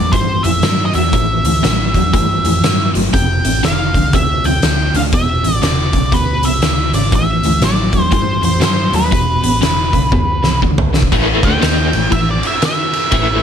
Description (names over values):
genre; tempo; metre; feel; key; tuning
blues rock power trio and southern rock; 120 BPM; 4/4; swing 62% on 8ths; A minor; A4 = 440 Hz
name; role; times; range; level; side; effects
octave-fuzz lead guitar; melody; 0.0-13.4 s; B4 to G5; -18 LUFS; right 1 dB; distortion
overdriven electric guitar; riff; 0.0-13.4 s; E2 to D#4; -17 LUFS; equal; tremolo
vintage muted fingered electric bass; bass; 0.0-13.4 s; E1 to G2; -18 LUFS; equal; none
oversized low-tuned drum kit; drums; 0.1-13.3 s; crash cymbal, hi-hat, kick drum, ride cymbal, snare drum, toms; -16 LUFS; equal; none
room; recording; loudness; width
light reverb; none; -12 LUFS; side -8 dB against mid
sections
0.0-11.1 A section; 11.1-13.4 B section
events
drum fill 10.1-11.1; lead electric guitar solo 11.1-13.4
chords
0.0 A5; 3.1 F5; 5.1 E7(no3); 7.1 A5; 9.1 E5; 11.1 A5